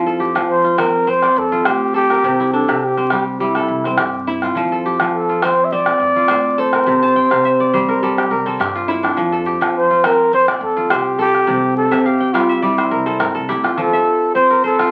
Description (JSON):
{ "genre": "west african traditional, West African string and xylophone music", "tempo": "104 BPM", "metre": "4/4", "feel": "straight", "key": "F major", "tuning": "A4 = 437 Hz", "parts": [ { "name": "kora", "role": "arpeggios", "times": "0.0-14.9 s", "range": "C3 to A5", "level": "-20 LUFS", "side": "equal", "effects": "none" }, { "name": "upright bass", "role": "bass", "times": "0.0-13.8 s", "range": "C2 to F3", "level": "-35 LUFS", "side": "equal", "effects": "none" }, { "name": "calabash", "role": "percussion", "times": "0.4-14.9 s", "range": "none", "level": "-23 LUFS", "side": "equal", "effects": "none" }, { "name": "breathy trumpet", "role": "melody", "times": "0.5-14.9 s", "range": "E4 to E5", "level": "-18 LUFS", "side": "equal", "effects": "none" } ], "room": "wet studio reverb, RT60 0.5 s", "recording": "very old 78 rpm record, vinyl crackle, nothing above 10.8 kHz", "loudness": "-16 LUFS", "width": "mono", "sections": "0.0-13.8 A section; 13.8-14.9 B section", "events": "kora fill 7.0-9.2, 11.9-13.8", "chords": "0.0 F; 2.2 C; 4.5 F; 6.9 C; 9.2 F; 11.5 C; 13.8 F" }